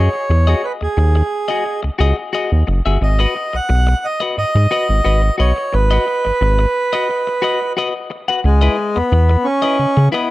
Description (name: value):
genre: funk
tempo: 88 BPM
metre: 4/4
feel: straight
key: C# minor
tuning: A4 = 441 Hz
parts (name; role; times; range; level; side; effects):
- accordion; melody; 0.0-10.3 s; G#3 to F#5; -18 LUFS; right 1 dB; none
- clean electric guitar; accompaniment; 0.0-10.3 s; E4 to F#5; -21 LUFS; left 4 dB; spring reverb
- round analog bass; bass; 0.0-10.1 s; F#1 to C#3; -13 LUFS; equal; none
room: little or no reverb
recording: dry, close 1970s-style studio recording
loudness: -14 LUFS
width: side -17 dB against mid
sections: 0.0-8.4 A section; 8.4-10.3 B section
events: break 7.1-8.4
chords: 0.0 Emaj9; 3.0 G#m7; 8.4 C#m9